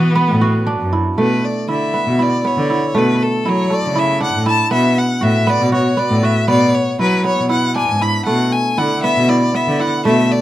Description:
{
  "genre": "contemporary instrumental, chamber music in an uneven meter",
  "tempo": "236 BPM (eighths)",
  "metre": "7/8",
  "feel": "straight",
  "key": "unclear",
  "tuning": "A4 = 440 Hz",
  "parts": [
    { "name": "rich violin", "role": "melody", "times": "0.0-10.4 s", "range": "B3 to B5", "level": "-19 LUFS", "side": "left 3 dB", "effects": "none" },
    { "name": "kora", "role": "arpeggios", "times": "0.0-10.4 s", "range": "A3 to F#4", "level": "-18 LUFS", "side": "right 3 dB", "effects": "none" },
    { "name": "rich cello", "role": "bass", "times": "0.0-10.3 s", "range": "F#2 to F#3", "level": "-17 LUFS", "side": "equal", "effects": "none" }
  ],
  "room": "light reverb",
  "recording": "close, detailed microphones",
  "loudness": "-13 LUFS",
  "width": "side -14 dB against mid",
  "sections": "0.0-1.2 A section; 1.2-10.4 B section",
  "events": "none",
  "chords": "0.0 Bm7; 1.2 E7sus4/B; 3.0 Dmaj9/B; 4.7 B5; 6.5 E13; 8.3 E7sus4/B",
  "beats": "0.15 0.41 0.66 0.92 | 1.17 1.43 1.68 1.94 2.19 2.44 2.70 | 2.95 3.20 3.45 3.70 3.96 4.21 4.46 | 4.71 4.96 5.22 5.47 5.72 5.97 6.23 | 6.48 6.73 6.99 7.24 7.50 7.75 8.01 | 8.27 8.52 8.78 9.03 9.29 9.54 9.80 | 10.05 10.30"
}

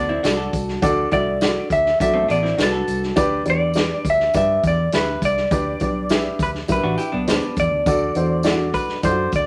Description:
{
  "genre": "uptempo 1960s-style soul",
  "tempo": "102 BPM",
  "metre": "4/4",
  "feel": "straight",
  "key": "D mixolydian",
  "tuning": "A4 = 440 Hz",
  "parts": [
    { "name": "clean electric guitar", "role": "melody", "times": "0.0-9.5 s", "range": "A4 to E5", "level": "-24 LUFS", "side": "equal", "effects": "none" },
    { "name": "dark upright piano", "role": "accompaniment", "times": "0.0-9.5 s", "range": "D4 to E5", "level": "-25 LUFS", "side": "equal", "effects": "none" },
    { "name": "vintage hollow-body jazz guitar", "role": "riff", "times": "0.0-3.1, 6.8-8.0 s", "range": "A3 to A4", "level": "-29 LUFS", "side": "equal", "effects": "none" },
    { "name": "vintage muted fingered electric bass", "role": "bass", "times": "0.0-9.5 s", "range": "A1 to G2", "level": "-28 LUFS", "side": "equal", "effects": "none" },
    { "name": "swinging big-band drum kit", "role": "drums", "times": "0.2-9.5 s", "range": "hi-hat, kick drum, snare drum", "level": "-26 LUFS", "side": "equal", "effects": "none" },
    { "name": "tambourine", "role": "percussion", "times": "0.2-9.5 s", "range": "none", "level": "-44 LUFS", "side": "equal", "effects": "none" }
  ],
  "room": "wet studio reverb, RT60 0.6 s",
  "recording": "none",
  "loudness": "-20 LUFS",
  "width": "mono",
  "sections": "0.0-9.5 A section",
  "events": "none",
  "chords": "0.0 D; 3.2 G; 7.9 D",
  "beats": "0.24 | 0.83 1.42 2.00 2.59 | 3.18 3.76 4.35 4.93 | 5.52 6.11 6.69 7.28 | 7.86 8.45 9.04"
}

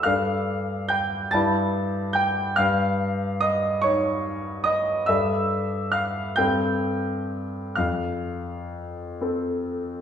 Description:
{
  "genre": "classical, impressionist solo piano",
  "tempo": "41-49 BPM (dotted quarters)",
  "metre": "6/8",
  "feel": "rubato",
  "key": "unclear",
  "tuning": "A4 = 440 Hz",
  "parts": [
    { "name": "clear concert grand piano", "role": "solo", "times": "0.0-10.0 s", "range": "F2 to A6", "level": "-22 LUFS", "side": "equal", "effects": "none" }
  ],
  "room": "wet recital hall reverb, RT60 1.3 s",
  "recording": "recorded in a church or concert hall",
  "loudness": "-22 LUFS",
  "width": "side -8 dB against mid",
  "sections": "0.0-10.0 A section",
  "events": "none",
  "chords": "0.1 Gsus2; 1.3 Dsus2/G; 2.6 Eb9/G; 5.1 Gsus2; 6.4 Gsus24; 7.8 F",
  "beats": "| 0.06 1.35 | 2.59 3.85 | 5.09 6.38 | 7.78 9.22"
}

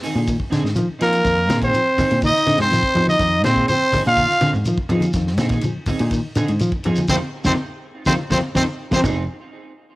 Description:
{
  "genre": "afrobeat",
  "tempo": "123 BPM",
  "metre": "4/4",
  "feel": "straight",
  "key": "F dorian",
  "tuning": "A4 = 441 Hz",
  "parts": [
    { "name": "clean electric guitar", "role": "stabs", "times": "0.0-9.2 s", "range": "C4 to Ab4", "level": "-29 LUFS", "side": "right 4 dB", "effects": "analog chorus, cassette tape, tape echo" },
    { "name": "tight funk drum kit", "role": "drums", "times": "0.0-9.1 s", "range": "crash cymbal, hi-hat, kick drum, ride cymbal, snare drum", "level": "-28 LUFS", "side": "equal", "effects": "cassette tape" },
    { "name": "shekere", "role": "percussion", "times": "0.0-9.2 s", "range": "none", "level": "-29 LUFS", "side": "equal", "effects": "none" },
    { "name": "electric guitar at the edge of break-up", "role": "arpeggios", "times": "0.1-9.2 s", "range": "C3 to F3", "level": "-29 LUFS", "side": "left 4 dB", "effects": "spring reverb, cassette tape" },
    { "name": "fingered electric bass", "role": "bass", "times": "0.2-9.3 s", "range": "F1 to F3", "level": "-20 LUFS", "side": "equal", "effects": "none" },
    { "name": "growling trumpet", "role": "melody", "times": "1.0-9.0 s", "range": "Bb4 to F5", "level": "-19 LUFS", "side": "equal", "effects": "cassette tape" },
    { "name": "clear trombone", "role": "second line", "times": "1.0-9.0 s", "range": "Bb3 to F4", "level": "-24 LUFS", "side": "right 2 dB", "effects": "cassette tape" },
    { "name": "congas", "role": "percussion", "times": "1.5-9.1 s", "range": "none", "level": "-25 LUFS", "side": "left 1 dB", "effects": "none" }
  ],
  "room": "small room ambience",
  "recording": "home recording on cassette",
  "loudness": "-16 LUFS",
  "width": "side -19 dB against mid",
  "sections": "0.0-9.0 A section",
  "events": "band accent 7.1-9.0; drum fill 8.1-9.0",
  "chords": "0.0 Fm7",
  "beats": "0.28 0.77 | 1.25 1.74 2.23 2.71 | 3.20 3.68 4.17 4.66 | 5.14 5.63 6.11 6.60 | 7.09 7.57 8.06 8.54 | 9.03"
}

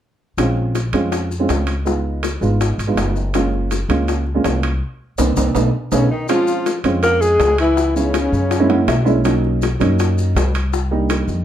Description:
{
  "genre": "Afro-Cuban jazz",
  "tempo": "162 BPM",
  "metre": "4/4",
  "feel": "straight",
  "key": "unclear",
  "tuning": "A4 = 441 Hz",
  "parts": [
    { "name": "dark upright piano", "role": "accompaniment", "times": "0.4-11.4 s", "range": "F#3 to Gb5", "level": "-19 LUFS", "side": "right 3 dB", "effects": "none" },
    { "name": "upright bass", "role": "bass", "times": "0.4-11.4 s", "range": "Gb1 to Gb2", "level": "-19 LUFS", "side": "left 1 dB", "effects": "none" },
    { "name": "bongos", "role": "percussion", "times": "0.4-11.4 s", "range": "none", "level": "-26 LUFS", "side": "left 9 dB", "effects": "none" },
    { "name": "maracas", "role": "percussion", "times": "0.4-11.4 s", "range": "none", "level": "-34 LUFS", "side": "left 4 dB", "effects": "none" },
    { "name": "timbales", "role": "percussion", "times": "0.4-11.3 s", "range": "none", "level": "-26 LUFS", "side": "right 5 dB", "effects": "none" },
    { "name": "mellow alto saxophone", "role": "melody", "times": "5.9-9.0 s", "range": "Db4 to Bb4", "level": "-18 LUFS", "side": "right 1 dB", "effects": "plate reverb" },
    { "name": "breathy tenor saxophone", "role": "second line", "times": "5.9-9.0 s", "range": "Db3 to Bb3", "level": "-22 LUFS", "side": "left 6 dB", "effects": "none" }
  ],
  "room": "light reverb",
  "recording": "none",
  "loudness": "-15 LUFS",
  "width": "side -10 dB against mid",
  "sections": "0.4-6.3 A section; 6.3-11.4 B section",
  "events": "drum fill 4.8-6.3; band accent 4.8-6.3; upright piano fill 8.5-9.3",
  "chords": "0.4 Bbm9; 1.9 Db9; 3.3 Gbmaj7; 4.8 Cm7; 5.6 B7; 6.3 Dbmaj7; 7.8 Dbm7; 8.5 Gb7; 9.3 Bmaj7; 10.7 Cm7",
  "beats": "| 0.38 0.75 1.12 1.49 | 1.86 2.23 2.60 2.97 | 3.34 3.71 4.08 4.45 | 4.82 5.19 5.56 5.93 | 6.30 6.67 7.04 7.41 | 7.78 8.14 8.51 8.88 | 9.25 9.62 9.99 10.36 | 10.73 11.10"
}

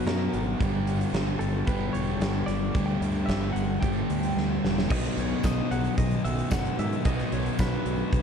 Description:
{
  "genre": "rock, shoegaze and dream pop",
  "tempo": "112 BPM",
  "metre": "4/4",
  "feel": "straight",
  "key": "unclear",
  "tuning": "A4 = 440 Hz",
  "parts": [
    { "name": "direct-recorded clean electric guitar", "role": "melody", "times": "0.0-8.2 s", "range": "A4 to G5", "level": "-36 LUFS", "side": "right 1 dB", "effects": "lush chorus, tape echo" },
    { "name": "crunchy overdriven guitar", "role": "riff", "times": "0.0-8.2 s", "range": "G2 to B4", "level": "-31 LUFS", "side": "right 9 dB", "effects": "reverse reverb" },
    { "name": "thick fuzz guitar", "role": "riff", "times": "0.0-8.2 s", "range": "G2 to B3", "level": "-30 LUFS", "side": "left 9 dB", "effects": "distortion, lush chorus" },
    { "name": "growling fingered electric bass", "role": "bass", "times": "0.1-8.2 s", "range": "E1 to G#2", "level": "-31 LUFS", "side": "equal", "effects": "overdrive" },
    { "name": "huge arena drum kit", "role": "drums", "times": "0.1-8.2 s", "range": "crash cymbal, hi-hat, kick drum, snare drum", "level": "-30 LUFS", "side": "equal", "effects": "none" },
    { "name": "tambourine", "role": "percussion", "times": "5.4-7.7 s", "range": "none", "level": "-46 LUFS", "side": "left 10 dB", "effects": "none" }
  ],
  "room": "moderate huge ambient reverb, RT60 7.1 s",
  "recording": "dreamy mix soaked in reverb",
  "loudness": "-24 LUFS",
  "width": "side -7 dB against mid",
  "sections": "0.0-4.9 A section; 4.9-8.2 B section",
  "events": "drum fill 4.4-4.9",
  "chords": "0.0 B; 0.6 G; 4.9 B",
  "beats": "0.06 | 0.60 1.14 1.67 2.21 | 2.75 3.29 3.83 4.36 | 4.90 5.44 5.97 6.51 | 7.05 7.58 8.12"
}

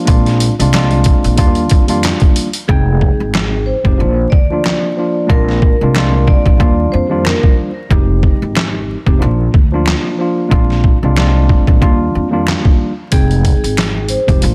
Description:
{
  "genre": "hip hop, boom-bap hip-hop",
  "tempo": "92 BPM",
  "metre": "4/4",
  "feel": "swing 55% on 16ths",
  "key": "F dorian",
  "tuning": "A4 = 441 Hz",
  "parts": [
    { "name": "tine electric piano", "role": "accompaniment", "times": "0.0-14.5 s", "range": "Eb2 to G5", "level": "-20 LUFS", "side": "equal", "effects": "high-pass filter, low-pass filter" },
    { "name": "upright bass", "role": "bass", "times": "0.1-14.5 s", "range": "F1 to F2", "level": "-17 LUFS", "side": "equal", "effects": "none" },
    { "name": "trip hop sampler-style drum kit", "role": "drums", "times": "0.1-14.5 s", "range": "handclaps, hi-hat, kick drum, snare drum", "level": "-15 LUFS", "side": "equal", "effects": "none" },
    { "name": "finger snap", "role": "percussion", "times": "0.7-13.9 s", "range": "none", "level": "-28 LUFS", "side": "equal", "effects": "none" },
    { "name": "vibraphone with medium hard mallets", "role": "melody", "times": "2.7-7.5, 13.1-14.5 s", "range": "Ab4 to D5", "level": "-22 LUFS", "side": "equal", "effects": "high-pass filter, low-pass filter, tape echo" }
  ],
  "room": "small room ambience",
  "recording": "dense, heavily limited modern master, vinyl crackle",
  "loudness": "-13 LUFS",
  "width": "mono",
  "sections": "0.0-2.7 A section; 2.7-14.5 B section",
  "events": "hi-hats muted 2.7-13.1",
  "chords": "0.1 Bb7; 1.4 Ebmaj7; 2.7 Fm7; 4.0 Bb; 5.3 Bb7; 6.6 Ebmaj7; 7.9 Fm7; 9.2 Bb; 10.5 Bb7; 11.8 Ebmaj7; 13.1 Fm7",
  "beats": "| 0.08 0.73 1.38 2.04 | 2.69 3.34 3.99 4.64 | 5.30 5.95 6.60 7.25 | 7.91 8.56 9.21 9.86 | 10.51 11.17 11.82 12.47 | 13.12 13.78 14.43"
}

